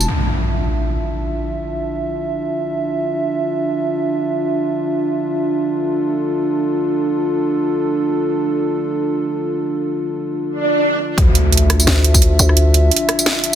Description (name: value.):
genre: half-time drum and bass.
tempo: free time.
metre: none.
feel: none.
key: D minor.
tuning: A4 = 442 Hz.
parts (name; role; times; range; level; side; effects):
dark analog pad; sustained chords; 0.0-13.6 s; D4 to E5; -19 LUFS; right 1 dB; chorus, sidechain pumping.
growling 808-style bass; bass; 0.0-0.1, 11.2-12.9 s; D2; -13 LUFS; equal; none.
drum and bass drum kit; drums; 0.0-0.1, 11.2-13.5 s; hi-hat, rim click, snare drum, tambourine; -17 LUFS; right 2 dB; overdrive.
impact and swell; sound effects; 0.1-1.5, 10.6-12.6 s; none; -20 LUFS; equal; none.
electronic kick drum; drums; 11.2-12.2 s; none; -14 LUFS; equal; none.
room: light reverb.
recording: dense, heavily limited modern master.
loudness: -15 LUFS.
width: side -10 dB against mid.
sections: 0.1-11.2 A section; 11.2-13.6 B section.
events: impact 0.1-1.5, 11.2-12.6; swell 10.6-11.2; drop 11.2-13.6.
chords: 0.1 Dmadd9.